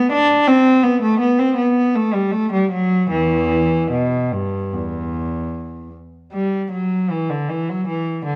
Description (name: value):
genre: classical, baroque-style suite movement for unaccompanied cello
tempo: 73-85 BPM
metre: 4/4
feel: rubato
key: E minor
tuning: A4 = 439 Hz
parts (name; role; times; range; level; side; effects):
- rich cello; solo; 0.0-8.4 s; E2 to D4; -18 LUFS; equal; none
room: moderate stone room reverb, RT60 1.3 s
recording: worn, warbling old tape, cassette tape, warbly pitch drift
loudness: -18 LUFS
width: mono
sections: 0.0-6.3 A section; 6.3-8.4 B section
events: none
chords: none